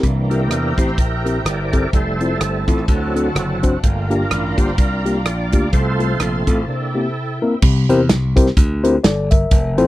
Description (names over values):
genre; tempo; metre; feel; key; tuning
uptempo gospel; 126 BPM; 4/4; swing 57% on 8ths; unclear; A4 = 437 Hz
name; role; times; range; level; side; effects
mellow tine electric piano; accompaniment; 0.0-9.9 s; G2 to E5; -19 LUFS; left 2 dB; none
tonewheel organ; sustained chords; 0.0-7.6 s; E3 to D5; -23 LUFS; right 4 dB; fast rotary speaker, overdrive, chorus vibrato
warm studio string section; sustained chords; 0.0-7.6 s; C5 to C6; -31 LUFS; left 4 dB; none
slap bass; bass; 0.0-9.9 s; F1 to E2; -21 LUFS; equal; none
modern studio drum kit; drums; 0.0-9.9 s; crash cymbal, hi-hat, kick drum, rim click, snare drum; -16 LUFS; equal; none
room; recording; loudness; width
little or no reverb; dry, close 1970s-style studio recording; -15 LUFS; side -16 dB against mid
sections
0.0-7.6 A section; 7.6-9.9 B section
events
tonewheel organ solo 0.0-7.6; break 6.7-7.6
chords
0.0 C7; 1.9 Fmaj7; 2.9 D7; 3.8 Gm7; 5.7 F/C; 6.7 C7